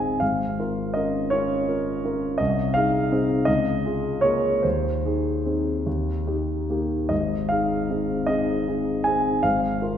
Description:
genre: classical, romantic character piece for solo piano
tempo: 47-56 BPM (dotted quarters)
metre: 6/8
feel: rubato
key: Ab major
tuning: A4 = 440 Hz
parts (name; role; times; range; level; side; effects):
- warm concert grand piano; solo; 0.0-10.0 s; Ab1 to Ab5; -21 LUFS; equal; none
room: wet scoring stage reverb, RT60 1.8 s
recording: heard from further back in the room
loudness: -21 LUFS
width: side -9 dB against mid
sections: 0.0-10.0 A section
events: none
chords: 0.2 Bbm/Ab; 2.4 Ab/C; 3.5 Bbm7/Db; 4.6 Ab/Eb; 5.9 Eb; 7.1 Ab; 9.4 Bb5/Ab

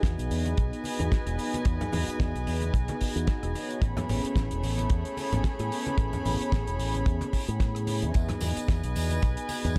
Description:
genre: nu-disco, nu disco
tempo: 111 BPM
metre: 4/4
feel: swing 55% on 16ths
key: E major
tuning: A4 = 435 Hz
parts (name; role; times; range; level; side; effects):
- warm analog pad; accompaniment; 0.0-9.8 s; B3 to C#5; -37 LUFS; equal; chorus, sidechain pumping, tape echo
- dark studio violin section; sustained chords; 0.0-9.8 s; A3 to B5; -38 LUFS; equal; sidechain pumping
- fingered electric bass with an envelope filter; bass; 0.0-9.7 s; E1 to A2; -32 LUFS; equal; none
- damped 70s drum kit; drums; 0.0-9.8 s; hi-hat, rim click, shaker, snare drum; -41 LUFS; equal; none
- kick drum; drums; 0.0-9.8 s; none; -29 LUFS; equal; none
- congas and tambourine; percussion; 0.5-9.8 s; none; -39 LUFS; equal; none
room: light reverb, small room ambience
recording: none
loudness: -28 LUFS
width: mono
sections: 0.0-9.8 A section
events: none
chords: 0.0 Emaj7; 3.8 Amaj9; 8.1 Emaj7

